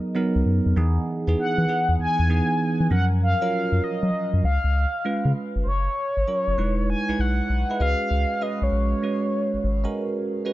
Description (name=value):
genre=R&B, new jack swing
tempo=98 BPM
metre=4/4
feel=swing 66% on 16ths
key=F# major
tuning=A4 = 440 Hz
part: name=bell-like tine electric piano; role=accompaniment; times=0.0-10.5 s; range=E3 to B4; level=-25 LUFS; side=right 2 dB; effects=phaser
part: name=round analog bass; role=bass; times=0.4-9.9 s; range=E1 to F#3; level=-22 LUFS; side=left 1 dB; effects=none
part: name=mellow horn-like synth lead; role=melody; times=1.4-9.8 s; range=B#4 to G#5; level=-26 LUFS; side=left 1 dB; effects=chorus, digital delay
room=digital ambience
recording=nothing above 7.9 kHz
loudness=-20 LUFS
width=side -16 dB against mid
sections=0.0-5.7 A section; 5.7-10.5 B section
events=none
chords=0.0 Bmaj7; 0.8 Emaj7; 2.9 F#maj7; 4.4 C#7; 5.7 F#maj7; 6.6 Emaj7; 7.8 C#7sus4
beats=0.15 | 0.76 1.37 1.99 2.60 | 3.21 3.82 4.43 5.05 | 5.66 6.27 6.88 7.50 | 8.11 8.72 9.33 9.95